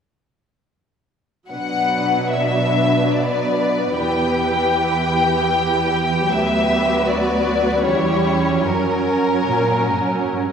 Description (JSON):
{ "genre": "classical, slow romantic movement for string orchestra", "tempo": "66-80 BPM", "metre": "3/4", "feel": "rubato", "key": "B minor", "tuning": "A4 = 440 Hz", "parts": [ { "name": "rich studio violin section", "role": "melody", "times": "1.5-10.3 s", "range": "A#4 to G5", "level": "-20 LUFS", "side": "left 2 dB", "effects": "none" }, { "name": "warm studio violin section", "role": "second line", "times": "1.5-10.5 s", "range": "C#4 to B4", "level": "-22 LUFS", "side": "left 1 dB", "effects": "none" }, { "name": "rich studio viola section", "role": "accompaniment", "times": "1.5-10.5 s", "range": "E3 to C#4", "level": "-23 LUFS", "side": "right 3 dB", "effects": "none" }, { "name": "warm studio cello section", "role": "bass", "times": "1.5-10.5 s", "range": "D2 to B2", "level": "-24 LUFS", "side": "right 3 dB", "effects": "none" } ], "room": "wet concert hall reverb, RT60 2.1 s", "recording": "recorded in a church or concert hall", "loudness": "-16 LUFS", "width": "side -7 dB against mid", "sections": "1.5-10.5 A section", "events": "none", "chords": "1.5 Bm; 4.0 Em; 6.3 Bm/D; 7.8 C#dim/E; 8.6 F#" }